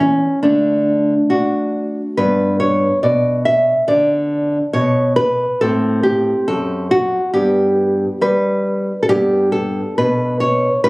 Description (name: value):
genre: classical, baroque-style dance for nylon-string guitar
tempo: 69 BPM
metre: 4/4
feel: rubato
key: unclear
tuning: A4 = 440 Hz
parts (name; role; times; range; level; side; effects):
- nylon-string guitar; solo; 0.0-10.9 s; E2 to E5; -14 LUFS; equal; none
room: light reverb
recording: recorded on a phone in the room, club reverb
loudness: -14 LUFS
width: side -24 dB against mid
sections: 0.0-10.9 A section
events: none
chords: 0.4 D; 2.2 G; 5.6 F#dim/A; 7.4 G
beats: 0.43 1.31 | 2.18 3.04 3.89 4.75 | 5.63 6.50 7.36 8.23 | 9.10 9.97 10.85